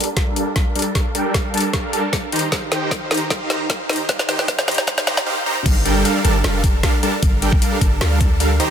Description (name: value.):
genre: future bass.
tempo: 153 BPM.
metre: 4/4.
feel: half-time.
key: unclear.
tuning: A4 = 440 Hz.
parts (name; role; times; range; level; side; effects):
supersaw chords; riff; 0.0-8.7 s; Eb3 to Bb5; -20 LUFS; right 1 dB; sidechain pumping, low-pass filter, ping-pong delay.
trap drum kit; drums; 0.0-8.7 s; crash cymbal, hi-hat, snare drum; -22 LUFS; left 1 dB; soft clipping on snare.
electronic kick drum; drums; 0.2-8.3 s; none; -19 LUFS; equal; none.
warm 808-style bass; bass; 5.7-8.6 s; F1 to D2; -19 LUFS; equal; sidechain pumping.
room: light reverb, digital ambience.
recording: dense, heavily limited modern master, high-pass filter.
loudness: -16 LUFS.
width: side -8 dB against mid.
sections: 0.0-5.7 A section; 5.7-8.7 B section.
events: build-up 0.0-5.7; drum fill 0.0-5.3; filter sweep on supersaw synth 0.0-5.7; filter sweep 0.0-5.7; drop 5.7-8.7.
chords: 0.0 Gm9; 2.3 Eb69; 5.7 Gm9.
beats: 0.17 0.56 | 0.95 1.34 1.74 2.13 | 2.52 2.91 3.31 3.70 | 4.09 4.48 4.87 5.27 | 5.66 6.05 6.44 6.83 | 7.23 7.62 8.01 8.40.